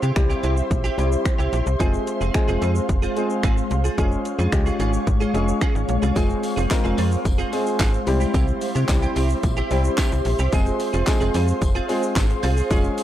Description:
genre	dance-pop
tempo	110 BPM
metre	4/4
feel	straight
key	F harmonic minor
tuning	A4 = 445 Hz
part	ethereal airy pad	sustained chords	0.0-13.0 s	Ab3 to Db6	-27 LUFS	equal	ensemble chorus, built-in reverb, sidechain pumping
part	direct-recorded clean electric guitar	riff	0.0-13.0 s	C4 to Ab4	-30 LUFS	right 5 dB	ensemble chorus
part	slap-like FM bass	bass	0.0-12.9 s	F1 to C3	-22 LUFS	equal	sidechain pumping
part	house drum kit	drums	0.0-13.0 s	finger snaps, handclaps, hi-hat, kick drum, shaker, snare drum	-23 LUFS	equal	none
part	warm baby grand piano	accompaniment	0.2-13.0 s	G3 to Bb4	-26 LUFS	left 1 dB	sidechain pumping
part	tambourine	percussion	6.2-13.0 s	none	-41 LUFS	left 4 dB	none
room	little or no reverb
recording	dry, gritty hardware recording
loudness	-18 LUFS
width	side -12 dB against mid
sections	0.0-13.0 A section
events	none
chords	0.0 C; 1.8 Fm; 4.0 Db/F; 6.2 Fm; 8.1 C; 10.5 Fm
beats	0.16 0.71 1.25 | 1.80 2.34 2.89 3.44 | 3.98 4.53 5.07 5.62 | 6.16 6.71 7.25 7.80 | 8.34 8.89 9.44 9.98 | 10.53 11.07 11.62 12.16 | 12.71

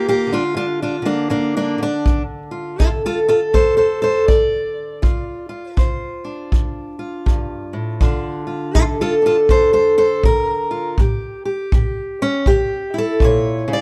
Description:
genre	acoustic country blues, solo or duo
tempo	81 BPM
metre	4/4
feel	swing 62% on 8ths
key	D minor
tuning	A4 = 440 Hz
part	fingerpicked steel-string acoustic guitar	melody	0.0-13.8 s	D2 to D5	-20 LUFS	equal	plate reverb
part	kick drum	drums	2.1-13.4 s	none	-20 LUFS	equal	none
room	light reverb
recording	dark, warm production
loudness	-18 LUFS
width	mono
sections	0.0-13.8 A section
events	steel-string acoustic guitar solo 0.0-13.8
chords	0.0 Gm7; 2.1 Dm7; 8.0 Bbmaj7; 11.0 A7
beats	0.57 1.31 | 2.06 2.80 3.54 4.29 | 5.03 5.77 6.52 7.26 | 8.00 8.75 9.49 10.23 | 10.98 11.72 12.47 13.21

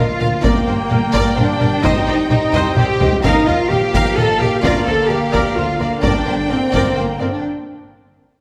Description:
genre	cinematic, epic orchestral film score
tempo	128 BPM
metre	3/4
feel	straight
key	unclear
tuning	A4 = 440 Hz
part	warm studio violin section	melody	0.0-7.4 s	F5 to G5	-28 LUFS	equal	none
part	warm symphonic violin section	second line	0.0-7.3 s	C5 to F5	-27 LUFS	equal	none
part	rich chamber viola section	accompaniment	0.0-7.3 s	Bb4 to C5	-27 LUFS	equal	none
part	clear trombone section	sustained chords	0.0-7.4 s	D3 to C4	-28 LUFS	equal	none
part	warm French horn section	sustained chords	0.0-7.4 s	Bb3 to A4	-25 LUFS	equal	none
part	dark symphonic cello section	bass	0.0-7.4 s	Bb3 to A4	-22 LUFS	equal	none
part	rich studio double bass section	bass	0.0-7.3 s	G1 to Eb2	-26 LUFS	equal	none
part	taiko ensemble	drums	0.2-7.2 s	none	-22 LUFS	equal	none
room	wet scoring stage reverb, RT60 1.6 s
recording	none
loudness	-16 LUFS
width	mono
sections	0.0-8.4 A section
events	drum fill 2.5-3.2; break 7.4-8.4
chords	0.4 Gm; 1.8 Cm; 3.2 Ebsus2; 4.6 Bb/D; 6.0 Gm; 7.4 N.C.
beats	| 0.43 0.90 1.37 | 1.83 2.30 2.77 | 3.23 3.70 4.17 | 4.63 5.10 5.57 | 6.03 6.50 6.97 | 7.43

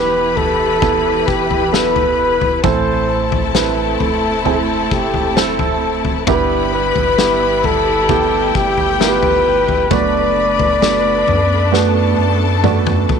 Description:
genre	pop ballad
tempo	66 BPM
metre	4/4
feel	straight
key	E minor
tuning	A4 = 440 Hz
part	breathy flugelhorn	melody	0.0-12.6 s	G4 to D5	-17 LUFS	left 1 dB	slapback echo
part	warm studio violin section	second line	0.0-13.2 s	G4 to B5	-22 LUFS	left 12 dB	none
part	warm grand piano	accompaniment	0.0-13.2 s	G2 to D5	-19 LUFS	right 15 dB	none
part	rich studio string section	sustained chords	0.0-13.2 s	E3 to B4	-22 LUFS	left 2 dB	none
part	sub bass with octave	bass	0.0-13.2 s	D1 to F#2	-23 LUFS	equal	none
part	loose indie drum kit	drums	0.4-13.2 s	kick drum, snare drum, toms	-20 LUFS	left 4 dB	none
room	light reverb, studio ambience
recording	1960s-style stereo with parts hard left and right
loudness	-12 LUFS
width	side -6 dB against mid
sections	0.0-13.2 A section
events	drum fill 11.7-13.2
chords	0.0 Em; 2.6 Am; 6.3 Em/G; 9.9 Bm7/F#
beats	0.82 1.73 | 2.64 3.55 4.46 5.37 | 6.28 7.18 8.09 9.00 | 9.91 10.82 11.73 12.64

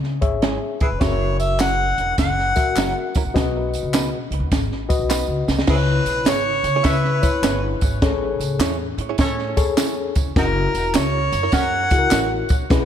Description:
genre	uptempo 1960s-style soul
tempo	103 BPM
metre	4/4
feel	swing 65% on 8ths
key	unclear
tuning	A4 = 440 Hz
part	upright bass	bass	0.0-12.8 s	E1 to C#3	-24 LUFS	equal	tube saturation
part	compact cocktail drum kit	drums	0.0-12.8 s	crash cymbal, hi-hat, kick drum, snare drum	-21 LUFS	equal	none
part	reed electric piano	accompaniment	0.2-12.8 s	A2 to E5	-25 LUFS	left 6 dB	harmonic tremolo
part	direct-recorded clean electric guitar	stabs	0.4-12.3 s	F#3 to C#5	-30 LUFS	right 10 dB	tape echo
part	mellow harmonica	melody	0.8-12.5 s	D#4 to F#5	-22 LUFS	equal	tape echo
part	tambourine and handclaps	percussion	1.0-12.8 s	none	-32 LUFS	equal	none
part	clear horn section	second line	6.8-12.0 s	C#4 to E5	-28 LUFS	right 2 dB	none
room	light reverb, studio ambience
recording	dark, warm production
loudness	-17 LUFS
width	side -9 dB against mid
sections	0.0-5.7 A section; 5.7-12.8 B section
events	drum fill 5.1-5.7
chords	0.0 C#m; 1.0 F#7; 3.3 B; 5.7 C#m7; 8.0 Amaj7; 10.4 F#7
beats	0.43 | 1.01 1.60 2.18 2.77 | 3.35 3.93 4.52 5.10 | 5.69 6.27 6.86 7.44 | 8.03 8.61 9.20 9.78 | 10.36 10.95 11.53 12.12 | 12.70

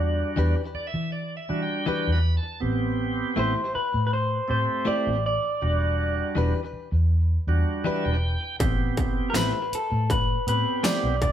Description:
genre	straight-eighth soul blues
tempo	80 BPM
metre	4/4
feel	straight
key	E minor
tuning	A4 = 440 Hz
part	electric guitar through a small old amp	melody	0.0-11.3 s	A4 to D5	-26 LUFS	equal	digital delay
part	bright tonewheel organ	accompaniment	0.0-11.2 s	G3 to B5	-29 LUFS	right 3 dB	slow rotary speaker
part	vintage muted fingered electric bass	bass	0.0-11.3 s	E1 to E3	-25 LUFS	equal	none
part	direct-recorded clean electric guitar	stabs	0.4-11.1 s	E3 to C5	-30 LUFS	left 4 dB	digital delay
part	dubstep drum kit	drums	8.6-11.3 s	hi-hat, kick drum, snare drum, tambourine	-26 LUFS	equal	distortion
room	moderate studio reverb, RT60 0.7 s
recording	band playing live in one room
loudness	-22 LUFS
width	side -10 dB against mid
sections	0.0-11.3 A section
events	tonewheel organ fill 0.4-2.6, 7.5-8.6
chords	0.0 Em7; 2.6 Am7; 5.6 Em7; 8.6 Am7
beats	0.38 1.13 1.88 | 2.62 3.37 4.12 4.87 | 5.62 6.36 7.11 7.86 | 8.60 9.35 10.10 10.84

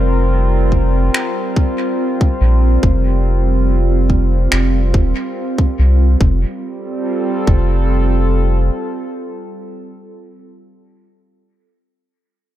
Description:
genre	ambient dub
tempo	71 BPM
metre	4/4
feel	straight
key	F major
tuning	A4 = 439 Hz
part	warbly tape-like pad	sustained chords	0.0-10.3 s	G3 to Bb4	-19 LUFS	right 1 dB	chorus, built-in reverb
part	soft dub sub bass	bass	0.0-8.7 s	Eb1 to C2	-14 LUFS	equal	none
part	electronic kick drum	drums	0.7-7.7 s	none	-14 LUFS	equal	none
part	finger snaps	drums	1.1-4.7 s	none	-21 LUFS	equal	dub echo
room	small room ambience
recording	dark, warm production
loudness	-13 LUFS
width	side -13 dB against mid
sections	0.0-6.2 A section; 6.2-9.6 B section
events	none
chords	0.0 Fsus4; 6.2 F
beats	0.29 1.14 1.98 | 2.83 3.67 4.52 5.36 | 6.21 7.05 7.90 8.74

